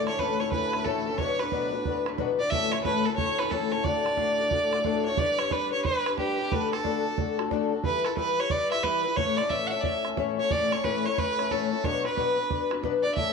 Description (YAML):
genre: celtic folk, Celtic hornpipe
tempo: 180 BPM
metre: 4/4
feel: swing 64% on 8ths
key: unclear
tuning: A4 = 440 Hz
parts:
  - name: rich fiddle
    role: melody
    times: 0.0-13.3 s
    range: G4 to F#5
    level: -27 LUFS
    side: right 2 dB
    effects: none
  - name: fingerpicked twelve-string acoustic guitar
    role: accompaniment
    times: 0.0-13.3 s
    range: A2 to C#5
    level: -28 LUFS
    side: left 7 dB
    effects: none
  - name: pedal harmonium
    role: drone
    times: 0.0-5.2 s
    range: D2 to A2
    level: -38 LUFS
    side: equal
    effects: none
  - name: bodhran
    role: percussion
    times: 0.1-13.3 s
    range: none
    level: -33 LUFS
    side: right 7 dB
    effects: none
room: wet echo chamber reverb, RT60 1.7 s, small room ambience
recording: 1960s-style stereo with parts hard left and right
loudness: -24 LUFS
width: side -5 dB against mid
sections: 0.0-5.2 A section; 5.2-13.3 A section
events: none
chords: 0.0 A; 1.2 Bm; 2.5 A; 3.8 D; 5.2 G; 6.5 D; 7.8 Em; 9.2 A; 11.8 Bm